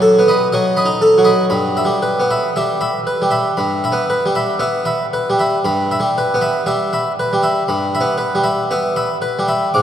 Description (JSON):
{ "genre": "classical, baroque-style suite movement for harpsichord", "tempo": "58 BPM", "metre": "4/4", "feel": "rubato", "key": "E minor from 5.6 s", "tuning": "A4 = 440 Hz", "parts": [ { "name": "harpsichord", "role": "solo", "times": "0.0-9.8 s", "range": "G2 to D6", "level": "-14 LUFS", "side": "equal", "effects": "none" } ], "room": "wet cathedral reverb, RT60 6.1 s", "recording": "in a vast, echoing space", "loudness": "-14 LUFS", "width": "side -10 dB against mid", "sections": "0.0-9.8 A section", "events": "none", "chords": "0.0 B7/F#; 1.5 Em/G", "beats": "0.51 | 1.51 2.54 3.55 4.59 | 5.63 6.65 7.67 8.70 | 9.75" }